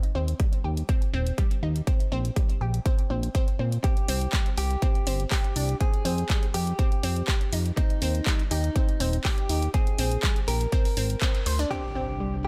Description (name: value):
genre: progressive house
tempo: 122 BPM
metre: 4/4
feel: straight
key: C minor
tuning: A4 = 440 Hz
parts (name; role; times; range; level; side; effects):
- big-room dance drum kit; drums; 0.0-12.4 s; crash cymbal, handclaps, hi-hat; -35 LUFS; equal; low-pass filter on hats, small room ambience, low-pass filter on snare, low-pass filter on cymbals
- analog pluck; arpeggios; 0.1-12.5 s; G3 to C5; -36 LUFS; equal; chorus, sidechain pumping, tape echo
- fat analog bass; bass; 0.2-11.7 s; Eb1 to Bb2; -28 LUFS; equal; sidechain pumping
- electronic kick drum; drums; 0.4-11.3 s; none; -27 LUFS; equal; small room ambience
- direct-recorded clean electric guitar; melody; 3.8-12.5 s; Eb4 to Bb4; -36 LUFS; equal; lush chorus, sidechain pumping, tape echo
- warm analog pad; sustained chords; 11.7-12.5 s; C2 to G5; -34 LUFS; equal; chorus, sidechain pumping
- impact; sound effects; 11.7-12.5 s; none; -37 LUFS; equal; none
room: digital ambience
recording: none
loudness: -26 LUFS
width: mono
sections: 0.0-11.7 A section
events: band accent 11.2; impact 11.7-12.5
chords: 0.0 Eb; 1.9 Bbsus2; 3.8 C5; 5.8 Fm; 7.8 Eb; 9.7 Bb; 11.7 Csus2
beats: 0.40 0.89 1.38 | 1.87 2.36 2.86 3.35 | 3.84 4.33 4.82 5.32 | 5.81 6.30 6.79 7.28 | 7.77 8.27 8.76 9.25 | 9.74 10.23 10.72 11.22 | 11.71 12.20